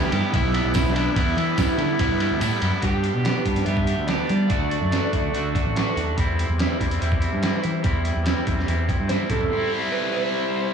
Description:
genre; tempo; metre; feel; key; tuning
indie rock; 144 BPM; 4/4; straight; unclear; A4 = 440 Hz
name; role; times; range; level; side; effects
raw garage guitar; melody; 0.0-5.9, 9.1-10.7 s; D4 to E5; -27 LUFS; right 1 dB; overdrive, tape echo
chorused pulse-width pad; sustained chords; 0.0-9.5 s; G4 to D6; -36 LUFS; right 3 dB; none
distorted electric guitar; riff; 0.0-10.7 s; G3 to G4; -26 LUFS; equal; overdrive
fuzz fingered electric bass; bass; 0.0-9.5 s; A1 to G3; -24 LUFS; equal; overdrive, transformer saturation
dusty soul sampler-style drum kit; drums; 0.1-9.5 s; hi-hat, kick drum, ride cymbal, snare drum, toms; -25 LUFS; right 1 dB; none
tambourine; percussion; 0.7-2.5 s; none; -40 LUFS; right 15 dB; none
room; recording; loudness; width
light reverb; blown-out, overdriven recording, overdrive, studio ambience; -20 LUFS; side -7 dB against mid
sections
0.0-2.8 A section; 2.8-9.5 B section; 9.5-10.7 C section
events
kick and snare drop out 2.4-2.8; drum fill 9.1-9.5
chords
0.0 Em/B; 1.2 Em; 2.8 Gmaj7; 4.5 D; 6.2 Cadd9/E; 9.3 C6; 9.5 C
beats
0.34 0.75 | 1.17 1.58 2.00 2.41 | 2.83 3.25 3.67 4.08 | 4.50 4.92 5.34 5.75 | 6.17 6.59 7.01 7.43 | 7.84 8.26 8.68 9.10 | 9.51 9.93 10.35

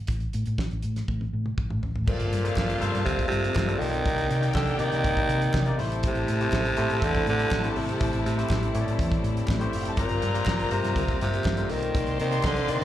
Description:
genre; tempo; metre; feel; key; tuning
disco; 122 BPM; 4/4; straight; G dorian; A4 = 439 Hz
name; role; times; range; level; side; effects
hollow-body short-scale fingered electric bass; bass; 0.0-12.8 s; F#1 to C3; -28 LUFS; equal; none
damped 70s drum kit; drums; 0.1-12.8 s; crash cymbal, hi-hat, kick drum, snare drum, toms; -29 LUFS; equal; none
growling tenor saxophone; melody; 2.1-12.8 s; Bb2 to Eb3; -28 LUFS; right 2 dB; slapback echo
dark studio string section; second line; 2.1-12.8 s; E4 to C6; -34 LUFS; left 2 dB; slapback echo, tape echo
overdriven tine electric piano; accompaniment; 2.1-12.8 s; C3 to D5; -32 LUFS; left 5 dB; slapback echo
clear studio string section; sustained chords; 2.1-12.8 s; C3 to A5; -35 LUFS; left 1 dB; none
group handclap; percussion; 2.6-12.6 s; none; -42 LUFS; right 3 dB; none
room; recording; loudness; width
little or no reverb; live gig heard through the venue's PA, club reverb; -23 LUFS; side -12 dB against mid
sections
0.0-2.1 A section; 2.1-12.8 B section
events
drum fill 1.1-2.1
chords
0.0 N.C.; 2.1 Gm11; 4.1 Cm9; 5.8 Am7; 10.0 Gm11; 11.9 Cm9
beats
| 0.09 0.58 1.08 1.58 | 2.07 2.57 3.06 3.56 | 4.05 4.55 5.04 5.54 | 6.03 6.52 7.02 7.51 | 8.00 8.50 8.99 9.48 | 9.98 10.47 10.96 11.46 | 11.95 12.44

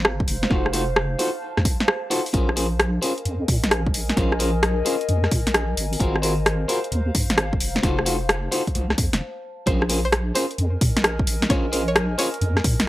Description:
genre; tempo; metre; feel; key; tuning
UK garage, two-step garage; 131 BPM; 4/4; swing 67% on 16ths; Bb minor; A4 = 440 Hz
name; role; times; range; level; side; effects
deep soft wobble bass; bass; 0.0-12.9 s; F1 to Bb2; -24 LUFS; equal; chorus
house drum kit; drums; 0.0-12.9 s; hi-hat, rim click, snare drum; -22 LUFS; equal; overdrive
warbly tape-like pad; texture; 0.0-12.9 s; Bb4 to A5; -31 LUFS; left 1 dB; chorus, built-in reverb, phaser, sidechain pumping
electronic kick drum; drums; 0.2-12.8 s; none; -23 LUFS; equal; overdrive
clean electric guitar; stabs; 0.5-12.3 s; Db4 to C5; -26 LUFS; left 1 dB; vintage 12-bit sampler grit, low-pass filter, analog delay
string-like resonator pluck; melody; 9.7-12.4 s; C5 to Db5; -29 LUFS; right 1 dB; chorus
room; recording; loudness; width
light reverb; dry, gritty hardware recording; -19 LUFS; side -16 dB against mid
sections
0.0-9.7 A section; 9.7-12.9 B section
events
break 9.2-9.7; drop 9.7-12.9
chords
0.3 F7b9; 2.3 Bbm9; 5.8 Ab13; 7.6 F7b9; 9.7 Bbm9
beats
0.05 | 0.51 0.96 1.42 1.88 | 2.34 2.80 3.25 3.71 | 4.17 4.63 5.09 5.54 | 6.00 6.46 6.92 7.38 | 7.83 8.29 8.75 9.21 | 9.67 10.12 10.58 11.04 | 11.50 11.96 12.41 12.87

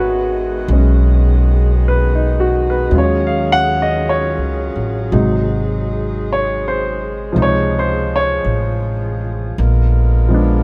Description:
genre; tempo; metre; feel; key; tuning
jazz ballad; 54 BPM; 4/4; swing 67% on 8ths; unclear; A4 = 438 Hz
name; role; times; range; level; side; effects
warm baby grand piano; accompaniment; 0.0-10.6 s; B#2 to F#5; -20 LUFS; equal; none
mellow saxophone section; sustained chords; 0.0-10.6 s; D3 to A#4; -27 LUFS; equal; none
upright bass; bass; 0.0-10.6 s; G#1 to D#2; -18 LUFS; equal; none
room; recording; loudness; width
little or no reverb; close, detailed microphones; -16 LUFS; mono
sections
0.0-10.6 A section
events
none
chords
0.0 G#m7; 2.9 D#m11; 5.1 G#7; 7.4 C#maj7; 9.6 A#7b9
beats
0.70 1.80 | 2.91 4.02 5.13 6.24 | 7.35 8.46 9.58

